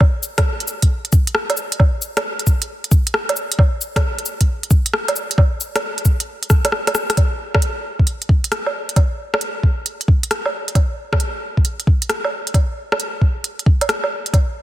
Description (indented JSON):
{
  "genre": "future garage",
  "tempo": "134 BPM",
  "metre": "4/4",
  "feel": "swing 67% on 16ths",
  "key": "none",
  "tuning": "none",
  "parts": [
    { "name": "electronic kick drum", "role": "drums", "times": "0.0-14.5 s", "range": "none", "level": "-14 LUFS", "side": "equal", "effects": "none" },
    { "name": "organic electronic drum kit", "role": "drums", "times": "0.0-14.5 s", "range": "cabasa, hi-hat, rim click, woodblock", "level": "-20 LUFS", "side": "right 1 dB", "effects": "soft clipping on snare" }
  ],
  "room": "light reverb",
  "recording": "dense, heavily limited modern master",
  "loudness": "-16 LUFS",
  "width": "side -14 dB against mid",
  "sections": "0.0-7.2 A section; 7.2-14.6 B section",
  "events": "drum fill 6.5-7.2",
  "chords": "none",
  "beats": "| 0.01 0.46 0.91 1.35 | 1.80 2.25 2.70 3.14 | 3.59 4.04 4.49 4.93 | 5.38 5.83 6.28 6.73 | 7.17 7.62 8.07 8.52 | 8.96 9.41 9.86 10.31 | 10.76 11.20 11.65 12.10 | 12.55 12.99 13.44 13.89 | 14.34"
}